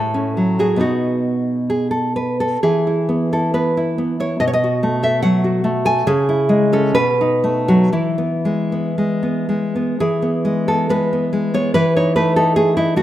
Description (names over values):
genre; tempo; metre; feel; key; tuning
romantic piece for solo classical guitar; 57-75 BPM; 2/4; rubato; E major; A4 = 439 Hz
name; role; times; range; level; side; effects
nylon-string guitar; solo; 0.0-13.0 s; A2 to G#5; -15 LUFS; equal; none
room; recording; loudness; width
light reverb; minimal, uncompressed stereo recording; -15 LUFS; side -13 dB against mid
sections
0.0-10.0 A section; 10.0-13.0 A section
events
none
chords
0.0 F#m/A; 0.8 B; 2.6 E5; 4.4 B5; 6.1 C#m; 7.0 B7; 7.9 E; 11.7 Amaj9#11/E